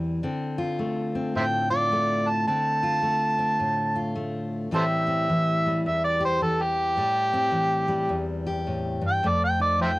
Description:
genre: acoustic country blues, solo or duo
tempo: 107 BPM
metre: 4/4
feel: swing 62% on 8ths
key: A minor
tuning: A4 = 439 Hz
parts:
  - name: fingerpicked steel-string acoustic guitar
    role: accompaniment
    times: 0.0-10.0 s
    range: E2 to G4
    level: -26 LUFS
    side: left 1 dB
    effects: cassette tape
  - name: overdriven harmonica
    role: melody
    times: 1.4-10.0 s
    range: G4 to A5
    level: -23 LUFS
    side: right 1 dB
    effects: cassette tape
room: light reverb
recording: home recording on cassette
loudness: -22 LUFS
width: side -20 dB against mid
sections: 0.0-10.0 A section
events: none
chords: 0.2 Dm7; 4.7 Am7; 9.2 F7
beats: | 0.22 0.79 1.35 1.91 | 2.47 3.03 3.60 4.16 | 4.72 5.28 5.85 6.41 | 6.97 7.54 8.10 8.66 | 9.22 9.79

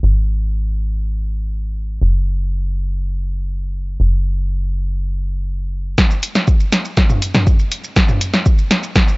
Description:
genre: melodic techno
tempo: 121 BPM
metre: 4/4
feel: straight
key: unclear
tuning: A4 = 440 Hz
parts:
  - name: tight sequencer bass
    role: bass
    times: 0.0-6.0 s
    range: F#1 to G#1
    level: -18 LUFS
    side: equal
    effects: sidechain pumping
  - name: deep house drum kit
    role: drums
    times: 6.0-9.2 s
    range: hi-hat, shaker, snare drum, toms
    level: -16 LUFS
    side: equal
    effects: overdrive, sidechain pumping on perc, sidechain pumping on hats, sidechain pumping on toms
  - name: electronic kick drum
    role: drums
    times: 6.0-9.1 s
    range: none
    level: -13 LUFS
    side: equal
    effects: overdrive
room: little or no reverb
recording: dry, gritty hardware recording, cassette tape, nothing above 7.7 kHz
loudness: -15 LUFS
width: side -27 dB against mid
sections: 0.0-6.0 A section; 6.0-9.2 B section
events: build-up 6.0-9.2; drum fill 6.0-9.2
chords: none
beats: | 0.03 0.53 1.02 1.52 | 2.02 2.51 3.01 3.50 | 4.00 4.49 4.99 5.49 | 5.98 6.48 6.97 7.47 | 7.96 8.46 8.96

